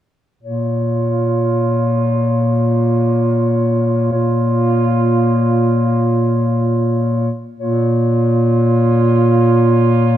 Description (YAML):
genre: classical, lyrical piece for single-reed quartet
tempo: free time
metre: none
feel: none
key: Bb minor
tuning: A4 = 441 Hz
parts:
  - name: mellow clarinet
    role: melody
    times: 0.4-10.2 s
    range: Db5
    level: -23 LUFS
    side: left 6 dB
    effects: none
  - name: clear alto saxophone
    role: second line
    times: 0.4-10.2 s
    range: F4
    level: -22 LUFS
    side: right 9 dB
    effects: none
  - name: bright clarinet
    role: accompaniment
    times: 0.4-10.2 s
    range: Bb3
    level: -19 LUFS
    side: left 4 dB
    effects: none
  - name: warm bass clarinet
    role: bass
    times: 0.4-10.2 s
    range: Bb2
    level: -16 LUFS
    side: right 1 dB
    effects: none
room: moderate recital hall reverb, RT60 1.8 s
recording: dark, warm production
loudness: -13 LUFS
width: side -11 dB against mid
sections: 0.4-10.2 A section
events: none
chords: 0.4 Bbm